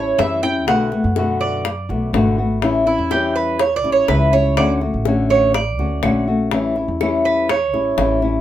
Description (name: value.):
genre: latin, Cuban son and guajira.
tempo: 123 BPM.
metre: 4/4.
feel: straight.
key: unclear.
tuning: A4 = 440 Hz.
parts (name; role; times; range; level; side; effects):
nylon-string guitar; accompaniment; 0.0-8.4 s; B2 to F#4; -18 LUFS; left 3 dB; none.
Cuban tres; arpeggios; 0.0-8.2 s; E4 to G5; -19 LUFS; right 5 dB; none.
upright bass; bass; 0.0-8.4 s; G#1 to F#2; -23 LUFS; right 1 dB; none.
bongos; percussion; 0.2-8.4 s; none; -24 LUFS; left 6 dB; none.
claves; percussion; 4.6-7.7 s; none; -32 LUFS; right 4 dB; none.
room: moderate studio ambience, RT60 0.5 s.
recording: minimal, uncompressed stereo recording.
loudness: -15 LUFS.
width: side -12 dB against mid.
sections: 0.0-8.4 A section.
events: Cuban tres solo 0.0-8.4.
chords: 0.0 A7; 0.7 Bm7; 2.6 A7; 4.6 Dmaj7; 6.5 A7.